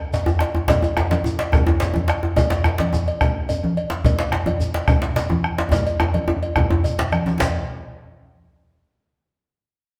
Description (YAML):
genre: west african traditional, West African drum ensemble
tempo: 143 BPM (dotted quarters)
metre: 12/8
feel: straight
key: none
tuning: none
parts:
  - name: cowbell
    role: percussion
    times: 0.1-7.5 s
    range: none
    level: -29 LUFS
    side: equal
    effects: none
  - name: djembe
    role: percussion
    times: 0.1-7.5 s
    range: none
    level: -30 LUFS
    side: equal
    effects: none
  - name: shekere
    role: percussion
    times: 0.1-7.5 s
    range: none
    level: -35 LUFS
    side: equal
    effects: none
  - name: bombo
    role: percussion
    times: 0.3-7.5 s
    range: none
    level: -26 LUFS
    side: equal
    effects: none
  - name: djembe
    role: percussion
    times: 0.3-7.5 s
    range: none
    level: -24 LUFS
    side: equal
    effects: none
  - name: congas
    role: percussion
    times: 0.7-7.5 s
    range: none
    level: -27 LUFS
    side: equal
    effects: none
room: wet large studio reverb, RT60 1.4 s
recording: band playing live in one room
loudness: -20 LUFS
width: mono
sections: 0.0-7.4 A section; 7.4-9.1 B section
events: drum fill 5.7-7.4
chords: none